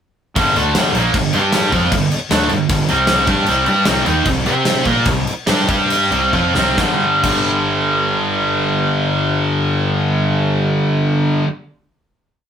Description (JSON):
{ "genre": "hard rock", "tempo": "132-154 BPM", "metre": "4/4", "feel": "straight", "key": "G minor", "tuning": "A4 = 441 Hz", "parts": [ { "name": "heavy high-gain guitar", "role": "riff", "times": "0.4-11.5 s", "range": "G2 to C5", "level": "-22 LUFS", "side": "left 2 dB", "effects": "distortion" }, { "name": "overdriven electric guitar", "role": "riff", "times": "0.4-11.5 s", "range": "G2 to C5", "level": "-16 LUFS", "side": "right 2 dB", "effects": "none" }, { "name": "sludgy distorted guitar", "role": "riff", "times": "0.4-11.5 s", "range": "G2 to C5", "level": "-24 LUFS", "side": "left 6 dB", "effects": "overdrive" }, { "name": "fuzz fingered electric bass", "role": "bass", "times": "0.4-11.4 s", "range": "G1 to C3", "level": "-23 LUFS", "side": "equal", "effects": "overdrive" }, { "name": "gated 80s drum kit", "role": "drums", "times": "0.4-7.4 s", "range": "crash cymbal, kick drum, snare drum", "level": "-19 LUFS", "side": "left 1 dB", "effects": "none" } ], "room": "moderate studio reverb, RT60 0.5 s", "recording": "rough rehearsal-room recording, warm saturation", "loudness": "-14 LUFS", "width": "side -8 dB against mid", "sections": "0.4-6.8 riff; 6.8-10.4 final chord", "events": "slowing down 3.5-6.8; drum fill 6.3-6.8", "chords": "0.4 Gm; 2.9 C5; 3.3 G5; 3.5 C5; 5.7 G5; 6.1 C5; 6.8 G5", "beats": "| 0.36 0.75 1.14 1.53 | 1.92 2.31 2.70 3.09 | 3.48 3.87 4.26 4.66 | 5.06 5.47 5.90 6.33 | 6.78 7.24 7.69 8.15 | 8.60 9.06 9.51 9.97" }